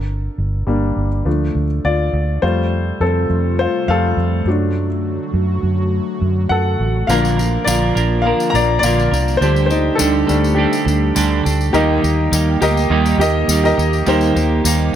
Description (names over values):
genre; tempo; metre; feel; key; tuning
piano-driven pop; 103 BPM; 4/4; straight; unclear; A4 = 441 Hz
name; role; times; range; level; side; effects
vintage muted fingered electric bass; bass; 0.0-14.9 s; G1 to F#2; -18 LUFS; equal; none
clear grand piano; accompaniment; 0.7-15.0 s; Eb3 to Bb5; -18 LUFS; left 2 dB; none
airy breathy pad; sustained chords; 2.8-15.0 s; C3 to G4; -25 LUFS; right 1 dB; chorus
clean electric guitar; riff; 7.1-14.9 s; Bb2 to Bb4; -19 LUFS; right 6 dB; lush chorus
tambourine; percussion; 7.1-14.8 s; none; -26 LUFS; left 6 dB; none
room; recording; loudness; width
light reverb; none; -14 LUFS; side -10 dB against mid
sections
0.0-2.4 A section; 2.4-11.7 B section; 11.7-15.0 C section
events
grand piano solo 0.0-2.4, 2.4-11.7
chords
0.0 Gm; 1.3 Dm; 2.4 Fadd9; 4.5 D/F#; 7.1 Bb; 9.4 Dsus4; 11.7 Eb